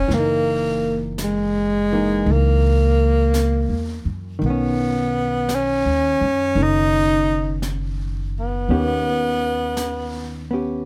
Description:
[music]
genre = jazz ballad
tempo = 56 BPM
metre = 4/4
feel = swing 68% on 8ths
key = unclear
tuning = A4 = 438 Hz
[part]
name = breathy tenor saxophone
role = melody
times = 0.0-10.5 s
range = Ab3 to D#4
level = -22 LUFS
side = equal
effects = none
[part]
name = hollow-body jazz guitar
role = accompaniment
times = 0.0-10.9 s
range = D#3 to G4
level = -29 LUFS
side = equal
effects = none
[part]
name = upright bass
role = bass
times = 0.0-10.8 s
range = Gb1 to Gb2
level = -25 LUFS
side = equal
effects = none
[part]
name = jazz brush drum kit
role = drums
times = 0.1-10.9 s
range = brushed snare drum, hi-hat, snare drum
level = -38 LUFS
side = equal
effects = none
[sound]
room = light reverb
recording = none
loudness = -20 LUFS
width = mono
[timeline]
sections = 0.0-10.9 A section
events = none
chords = 0.1 Gb13; 4.4 Badd9; 8.7 Eb7b13

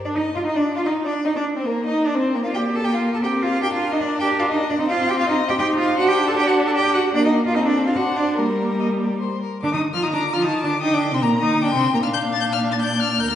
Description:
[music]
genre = quick classical-period movement for string quartet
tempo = 151 BPM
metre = 3/4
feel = straight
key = unclear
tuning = A4 = 440 Hz
[part]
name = warm violin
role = melody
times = 0.0-13.4 s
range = Bb3 to A6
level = -27 LUFS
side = left 6 dB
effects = none
[part]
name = rich violin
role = second line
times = 0.0-13.4 s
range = Bb4 to Bb5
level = -26 LUFS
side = left 2 dB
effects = none
[part]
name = warm viola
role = accompaniment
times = 0.1-13.4 s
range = G3 to F4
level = -23 LUFS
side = equal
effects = none
[part]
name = rich cello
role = bass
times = 0.1-13.4 s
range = D2 to A4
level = -22 LUFS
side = right 2 dB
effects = none
[sound]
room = wet recital hall reverb, RT60 1.7 s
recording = heard from further back in the room, nothing above 10.5 kHz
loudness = -18 LUFS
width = side -10 dB against mid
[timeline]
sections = 0.1-9.6 A section; 9.6-13.4 A section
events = none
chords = 0.1 Dm; 1.3 Cm9; 2.4 Bb; 3.6 Bb/D; 4.8 Cm; 6.0 D; 7.2 Bbadd11; 7.6 Adim/C; 8.0 D7; 8.4 Gm; 9.6 Bbadd11; 10.8 Gm; 12.0 Bb

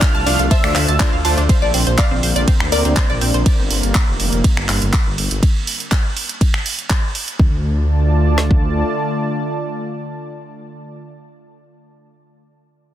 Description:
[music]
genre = progressive house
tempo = 122 BPM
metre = 4/4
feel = straight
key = D minor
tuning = A4 = 440 Hz
[part]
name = wide unison pluck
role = melody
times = 0.0-3.4 s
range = Bb4 to F5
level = -27 LUFS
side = left 2 dB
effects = sidechain pumping, dub echo
[part]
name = airy dreamy lead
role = second line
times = 0.0-1.2 s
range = E6 to F6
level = -26 LUFS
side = right 1 dB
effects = chorus, sidechain pumping, dub echo
[part]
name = lush unison pad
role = sustained chords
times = 0.0-11.0 s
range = D3 to A5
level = -24 LUFS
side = equal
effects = chorus, sidechain pumping
[part]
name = analog pluck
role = arpeggios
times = 0.0-3.4 s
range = C4 to A6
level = -23 LUFS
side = right 1 dB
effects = chorus, phaser, sidechain pumping, dub echo
[part]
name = supersaw stab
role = stabs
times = 0.0-1.4 s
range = A3 to F5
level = -26 LUFS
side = left 1 dB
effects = sidechain pumping, dub echo
[part]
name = deep house drum kit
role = drums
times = 0.0-8.6 s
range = kick drum, snare drum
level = -15 LUFS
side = equal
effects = none
[part]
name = house drum kit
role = drums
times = 0.0-7.4 s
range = finger snaps, handclaps, hi-hat, ride cymbal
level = -22 LUFS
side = right 2 dB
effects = sidechain pumping on hats, sidechain pumping on cymbals, soft clipping on snare
[part]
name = dark detuned saw bass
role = bass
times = 0.1-8.8 s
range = F1 to D2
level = -18 LUFS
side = equal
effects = tube saturation, sidechain pumping
[sound]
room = little or no reverb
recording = dense, heavily limited modern master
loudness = -14 LUFS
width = side -12 dB against mid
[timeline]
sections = 0.0-7.4 A section; 7.4-11.3 B section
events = drop 0.0-7.4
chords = 0.0 Dm; 1.5 Bbadd9; 3.5 Gm; 5.4 N.C.; 7.4 Dm

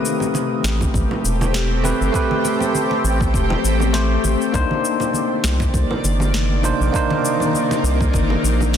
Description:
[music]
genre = sunset chillout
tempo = 100 BPM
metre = 4/4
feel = swing 56% on 16ths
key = unclear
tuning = A4 = 440 Hz
[part]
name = barky tine electric piano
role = accompaniment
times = 0.0-8.8 s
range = A3 to C5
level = -21 LUFS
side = moving between left 7 dB and right 5 dB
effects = auto-pan, ping-pong delay, shimmer reverb
[part]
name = shimmering ambient pad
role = sustained chords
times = 0.0-8.8 s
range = C3 to D5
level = -23 LUFS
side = left 2 dB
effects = chorus, built-in reverb, phaser, shimmer reverb
[part]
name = electronic cabasa and snare drum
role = drums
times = 0.1-8.8 s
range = none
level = -27 LUFS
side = left 2 dB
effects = overdrive, studio reverb
[part]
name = congas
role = percussion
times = 0.2-8.8 s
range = none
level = -28 LUFS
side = right 2 dB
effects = none
[part]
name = round analog bass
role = bass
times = 0.6-8.8 s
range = E1 to C2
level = -19 LUFS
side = equal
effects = none
[part]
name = electronic kick drum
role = drums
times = 0.8-8.3 s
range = none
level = -22 LUFS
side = equal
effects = studio reverb
[sound]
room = light reverb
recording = dense, heavily limited modern master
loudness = -16 LUFS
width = side -9 dB against mid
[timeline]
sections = 0.0-8.8 A section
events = none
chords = 0.0 Am9; 4.5 Cm9

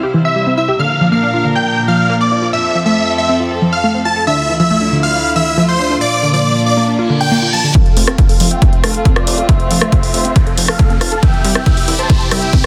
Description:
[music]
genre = uplifting trance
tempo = 138 BPM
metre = 4/4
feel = straight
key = F major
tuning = A4 = 438 Hz
[part]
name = warm studio string section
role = sustained chords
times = 0.0-12.7 s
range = D2 to C5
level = -22 LUFS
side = equal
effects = sidechain pumping
[part]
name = unison pluck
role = arpeggios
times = 0.0-12.6 s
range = D3 to A4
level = -19 LUFS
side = equal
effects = sidechain pumping, digital delay
[part]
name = big supersaw lead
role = melody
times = 0.2-12.7 s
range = F4 to A5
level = -19 LUFS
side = equal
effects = phaser, sidechain pumping, low-pass filter, delay
[part]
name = plucky unison lead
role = second line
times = 0.2-7.7 s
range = C6 to A6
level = -26 LUFS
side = equal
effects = none
[part]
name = reverse cymbal and riser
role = sound effects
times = 7.0-12.7 s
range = none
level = -26 LUFS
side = equal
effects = none
[part]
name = electronic kick drum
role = drums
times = 7.7-12.6 s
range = none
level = -14 LUFS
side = equal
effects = none
[part]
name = big-room dance drum kit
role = drums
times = 7.8-12.7 s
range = hi-hat, rim click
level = -20 LUFS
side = equal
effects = high-pass filter on cymbals, high-pass filter on hats, soft clipping on snare, high-pass filter on snare
[part]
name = plucky analog bass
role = bass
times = 8.0-12.5 s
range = F1 to C2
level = -26 LUFS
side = equal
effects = sidechain pumping, high-pass filter
[sound]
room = light reverb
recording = dense, heavily limited modern master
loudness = -13 LUFS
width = mono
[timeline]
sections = 0.0-7.8 A section; 7.8-12.7 B section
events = reverse cymbal 7.0-7.8; build-up 7.8-12.7; riser 7.8-12.7; filter sweep on supersaw synth 7.8-12.7; filter sweep on synth pluck 7.8-12.7; filter sweep 7.8-12.7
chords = 0.0 C; 0.8 Bb; 2.5 F; 4.3 Dmadd9; 6.0 Bb; 7.8 F; 11.2 C

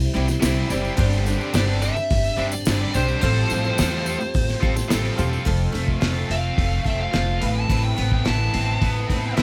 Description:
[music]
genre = folk rock and heartland rock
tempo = 107 BPM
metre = 4/4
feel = straight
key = unclear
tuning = A4 = 440 Hz
[part]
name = picked steel-string acoustic guitar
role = accompaniment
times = 0.0-9.4 s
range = A2 to C5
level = -34 LUFS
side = equal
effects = none
[part]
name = tonewheel organ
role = sustained chords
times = 0.0-9.4 s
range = G3 to B4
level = -38 LUFS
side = equal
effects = none
[part]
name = upright bass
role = bass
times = 0.0-9.4 s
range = E1 to E2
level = -26 LUFS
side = equal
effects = none
[part]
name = tambourine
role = percussion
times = 0.0-5.4 s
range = none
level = -39 LUFS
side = equal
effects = none
[part]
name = cranked stack guitar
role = riff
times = 0.1-9.4 s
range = F2 to A4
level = -30 LUFS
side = equal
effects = overdrive
[part]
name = cloth-damped thuddy drum kit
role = drums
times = 0.3-9.4 s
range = hi-hat, kick drum, snare drum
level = -28 LUFS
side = equal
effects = none
[part]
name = bright upright piano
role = accompaniment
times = 0.7-9.4 s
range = B3 to D5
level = -37 LUFS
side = equal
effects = none
[part]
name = dark smooth lead guitar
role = melody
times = 1.5-9.4 s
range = C5 to A5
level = -29 LUFS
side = equal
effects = overdrive
[sound]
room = light reverb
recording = none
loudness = -22 LUFS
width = mono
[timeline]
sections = 0.0-5.5 A section; 5.5-9.4 B section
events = lead electric guitar solo 5.5-9.4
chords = 0.0 C; 1.0 Gsus4; 3.2 Fadd9/A; 5.5 F; 7.4 Amadd9

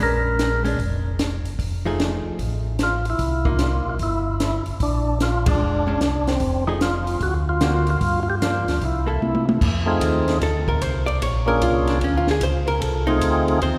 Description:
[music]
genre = soul jazz organ trio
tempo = 150 BPM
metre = 4/4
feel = swing 65% on 8ths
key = unclear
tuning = A4 = 440 Hz
[part]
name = percussive tonewheel organ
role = melody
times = 0.0-13.6 s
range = A3 to Bb4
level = -26 LUFS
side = equal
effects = slow rotary speaker
[part]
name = archtop guitar, miked and amplified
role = accompaniment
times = 0.0-13.8 s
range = D3 to D5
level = -29 LUFS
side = equal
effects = none
[part]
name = mellow tonewheel organ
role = bass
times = 0.0-13.8 s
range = F1 to C3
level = -26 LUFS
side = equal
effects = chorus vibrato, slow rotary speaker
[part]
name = compact cocktail drum kit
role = drums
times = 0.4-13.7 s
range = crash cymbal, hi-hat, kick drum, ride cymbal, snare drum, toms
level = -28 LUFS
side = equal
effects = none
[sound]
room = wet church reverb, RT60 3.1 s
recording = recorded in a church or concert hall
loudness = -21 LUFS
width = mono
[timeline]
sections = 0.0-9.6 A section; 9.6-13.8 B section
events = band accent 5.4; drum fill 9.2-9.6; hollow-body jazz guitar solo 9.6-13.8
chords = 0.0 Bb7#9; 1.6 F7#9; 3.2 C7#9; 4.8 Bb7; 6.4 F7#9; 7.2 D7alt; 8.0 Gm7; 8.8 C6; 9.6 F7#9; 11.2 Bb7#9; 12.8 F7#9

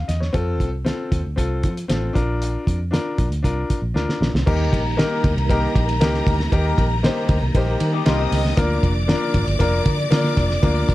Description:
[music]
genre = uptempo 1960s-style soul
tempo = 117 BPM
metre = 4/4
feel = straight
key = Eb major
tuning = A4 = 440 Hz
[part]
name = bright upright piano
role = accompaniment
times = 0.0-10.9 s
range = Bb3 to Eb5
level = -24 LUFS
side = left 3 dB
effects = none
[part]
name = vintage muted fingered electric bass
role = bass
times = 0.0-10.9 s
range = F1 to F3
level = -22 LUFS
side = equal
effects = none
[part]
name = cloth-damped thuddy drum kit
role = drums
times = 0.1-10.9 s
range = crash cymbal, hi-hat, kick drum, ride cymbal, snare drum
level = -22 LUFS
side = equal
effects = none
[part]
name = warm studio string section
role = second line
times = 4.5-10.9 s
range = Bb4 to Eb6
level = -27 LUFS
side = left 2 dB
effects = none
[part]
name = tonewheel organ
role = sustained chords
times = 4.5-10.9 s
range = D3 to Eb4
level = -29 LUFS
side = right 3 dB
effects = slow rotary speaker, chorus vibrato
[part]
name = electric guitar through a small old amp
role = riff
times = 7.9-8.6 s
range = C4 to G4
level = -27 LUFS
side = left 9 dB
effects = lush chorus
[sound]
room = little or no reverb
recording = dark, warm production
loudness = -18 LUFS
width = side -16 dB against mid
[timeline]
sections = 0.0-4.5 A section; 4.5-10.9 B section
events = drum fill 4.0-4.5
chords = 0.3 F; 2.2 Bb; 4.5 Eb; 8.6 Bb

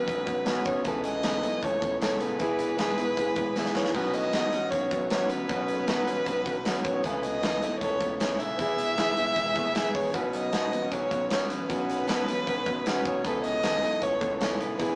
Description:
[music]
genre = jangly indie pop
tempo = 155 BPM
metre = 4/4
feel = straight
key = B mixolydian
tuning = A4 = 440 Hz
[part]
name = dark violin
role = melody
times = 0.0-15.0 s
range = B4 to E5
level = -29 LUFS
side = equal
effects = none
[part]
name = fingerpicked steel-string acoustic guitar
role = accompaniment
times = 0.0-15.0 s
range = B2 to A4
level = -30 LUFS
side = equal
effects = none
[part]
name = electric guitar through a small old amp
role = arpeggios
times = 0.0-15.0 s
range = B2 to E4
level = -35 LUFS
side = equal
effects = none
[part]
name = saturated sub bass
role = bass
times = 0.0-15.0 s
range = D#1 to C#2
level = -42 LUFS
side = equal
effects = none
[part]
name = big rock drum kit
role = drums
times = 0.1-14.9 s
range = hi-hat, kick drum, snare drum, splash cymbal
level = -32 LUFS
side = equal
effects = none
[part]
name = tambourine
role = percussion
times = 0.1-14.9 s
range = none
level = -48 LUFS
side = equal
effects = none
[sound]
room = light reverb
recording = rough rehearsal-room recording, small speaker sound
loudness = -25 LUFS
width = side -38 dB against mid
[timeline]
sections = 0.0-15.0 A section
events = drum fill 3.6-3.9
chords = 0.0 Bsus2; 0.9 Aadd9; 2.4 E; 3.9 Bsus2; 7.0 Aadd9; 8.6 E; 10.1 Bsus2; 13.2 Aadd9

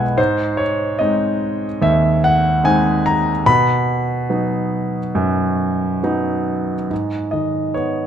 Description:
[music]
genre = classical, lyrical solo piano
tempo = 66-75 BPM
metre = 4/4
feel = rubato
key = B major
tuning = A4 = 440 Hz
[part]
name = warm concert grand piano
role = solo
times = 0.0-8.1 s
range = B1 to B5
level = -16 LUFS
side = equal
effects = none
[sound]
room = moderate recital hall reverb, RT60 1.4 s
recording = none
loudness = -16 LUFS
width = side -9 dB against mid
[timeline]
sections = 0.0-6.9 A section; 6.9-8.1 B section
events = grand piano fill 0.0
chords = 0.2 G#; 3.5 B; 6.9 G#m

